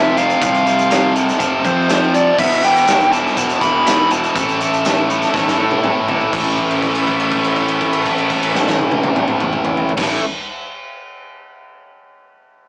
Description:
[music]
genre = classic rock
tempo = 122 BPM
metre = 4/4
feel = straight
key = A minor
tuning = A4 = 440 Hz
[part]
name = biting lead guitar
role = melody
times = 0.0-5.8 s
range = C5 to B5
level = -19 LUFS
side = equal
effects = overdrive
[part]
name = tight distorted guitar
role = riff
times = 0.0-10.2 s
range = E2 to A3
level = -20 LUFS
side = equal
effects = distortion
[part]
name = fuzz fingered electric bass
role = bass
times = 0.0-10.2 s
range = E1 to A2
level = -24 LUFS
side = equal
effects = overdrive
[part]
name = big rock drum kit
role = drums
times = 0.2-10.1 s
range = crash cymbal, hi-hat, kick drum, snare drum, toms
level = -22 LUFS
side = equal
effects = none
[sound]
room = moderate studio ambience, RT60 0.5 s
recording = rough rehearsal-room recording, warm saturation, small speaker sound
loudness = -16 LUFS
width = mono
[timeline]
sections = 0.0-6.3 A section; 6.3-10.3 B section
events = drum fill 5.3-6.3; held note 6.3-10.0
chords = 0.0 F5; 2.4 Em; 4.4 A5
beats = | 0.41 0.90 1.39 1.89 | 2.38 2.87 3.37 3.86 | 4.35 4.84 5.34 5.83 | 6.32 6.82 7.31 7.80 | 8.30 8.79 9.29 9.78

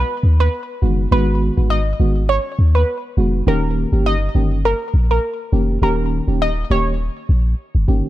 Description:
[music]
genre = afrobeats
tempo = 102 BPM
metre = 4/4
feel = swing 55% on 16ths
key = G# dorian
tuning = A4 = 437 Hz
[part]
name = glassy wavetable pluck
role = melody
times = 0.0-7.8 s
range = A#4 to D#5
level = -22 LUFS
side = right 1 dB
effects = chorus, ping-pong delay
[part]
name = clean 808-style bass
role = bass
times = 0.0-8.0 s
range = D#1 to D#2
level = -16 LUFS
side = equal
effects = none
[part]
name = mellow FM electric piano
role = accompaniment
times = 0.8-8.1 s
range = D#3 to G4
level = -21 LUFS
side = right 1 dB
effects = chorus, tremolo
[sound]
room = digital ambience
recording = none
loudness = -15 LUFS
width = side -15 dB against mid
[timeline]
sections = 0.0-8.1 A section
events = none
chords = 0.0 G#m7; 3.5 D#7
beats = 0.53 | 1.11 1.70 2.29 2.88 | 3.47 4.06 4.64 5.23 | 5.82 6.41 7.00 7.59

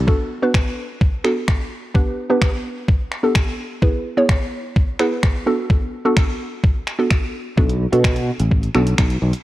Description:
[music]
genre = dance-pop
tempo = 128 BPM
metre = 4/4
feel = straight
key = B minor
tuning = A4 = 440 Hz
[part]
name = sustaining fretless electric bass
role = bass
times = 0.0, 7.6-9.3 s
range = A1 to B2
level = -18 LUFS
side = equal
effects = analog chorus, sidechain pumping
[part]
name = hollow square pluck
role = accompaniment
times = 0.1-9.1 s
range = B3 to C#5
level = -21 LUFS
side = right 1 dB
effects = chorus, sidechain pumping
[part]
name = gated 80s digital drum machine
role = drums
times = 0.1-9.4 s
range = finger snaps, hi-hat, kick drum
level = -18 LUFS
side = equal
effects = overdrive
[sound]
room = light reverb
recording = worn, warbling old tape, cassette tape, warbly pitch drift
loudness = -16 LUFS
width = side -16 dB against mid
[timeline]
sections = 0.1-9.4 A section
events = none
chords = 0.1 Bm7; 1.9 G; 3.8 E; 5.5 D6; 7.6 Bm7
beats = | 0.07 0.54 1.01 1.48 | 1.95 2.42 2.89 3.36 | 3.82 4.29 4.76 5.23 | 5.70 6.17 6.64 7.11 | 7.57 8.04 8.51 8.98

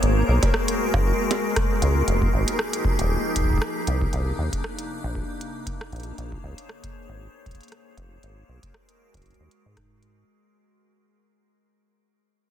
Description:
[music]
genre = IDM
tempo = 117 BPM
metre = 4/4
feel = swing 56% on 16ths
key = unclear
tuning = A4 = 442 Hz
[part]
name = icy glass pad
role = sustained chords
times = 0.0-10.3 s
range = C3 to Db5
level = -28 LUFS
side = left 1 dB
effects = chorus, built-in reverb
[part]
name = deep acid bass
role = bass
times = 0.0-10.2 s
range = Eb1 to Ab2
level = -23 LUFS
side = equal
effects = none
[part]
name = organic electronic drum kit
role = drums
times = 0.0-10.1 s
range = bongos, hi-hat, rim click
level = -30 LUFS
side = right 2 dB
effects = small room reverb, tape echo
[part]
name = flickering grainy texture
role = texture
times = 0.0-10.3 s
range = Bb3 to Bb4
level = -32 LUFS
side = equal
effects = built-in reverb
[part]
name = electronic kick drum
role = drums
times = 0.4-9.9 s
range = none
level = -26 LUFS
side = equal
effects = small room reverb
[sound]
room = light reverb, digital ambience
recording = dense, heavily limited modern master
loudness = -21 LUFS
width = side -10 dB against mid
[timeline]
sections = 0.0-10.3 A section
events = fade-out 0.0-10.3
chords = 0.0 Ab7sus2; 2.1 Fm9; 3.9 Cm9; 5.9 Bbm9; 8.2 Ab7sus2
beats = | 0.03 0.54 1.05 1.56 | 2.08 2.59 3.10 3.62 | 4.13 4.64 5.15 5.67 | 6.18 6.69 7.21 7.72 | 8.23 8.74 9.26 9.77

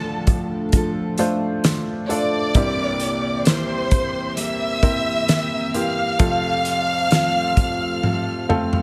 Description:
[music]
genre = pop ballad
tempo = 66 BPM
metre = 4/4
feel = straight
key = F major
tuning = A4 = 440 Hz
[part]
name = dark studio violin section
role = melody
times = 0.0-8.8 s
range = A4 to F6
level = -25 LUFS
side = equal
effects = digital delay
[part]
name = felt-muted upright piano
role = accompaniment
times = 0.0-8.8 s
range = C2 to C5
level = -28 LUFS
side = equal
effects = none
[part]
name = chorused pulse-width pad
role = sustained chords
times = 0.0-8.8 s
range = E3 to A4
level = -32 LUFS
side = equal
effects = none
[part]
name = fingerpicked steel-string acoustic guitar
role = arpeggios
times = 0.0-8.8 s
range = C3 to Bb4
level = -31 LUFS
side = equal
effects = none
[part]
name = loose indie drum kit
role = drums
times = 0.3-8.8 s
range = hi-hat, kick drum, snare drum, toms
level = -22 LUFS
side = equal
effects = none
[sound]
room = light reverb, small room ambience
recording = none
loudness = -21 LUFS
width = mono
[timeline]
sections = 0.0-8.8 A section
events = drum fill 8.0-8.8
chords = 0.0 Dm; 2.5 C7; 6.2 F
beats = 0.73 1.64 | 2.55 3.46 4.37 5.28 | 6.20 7.11 8.03

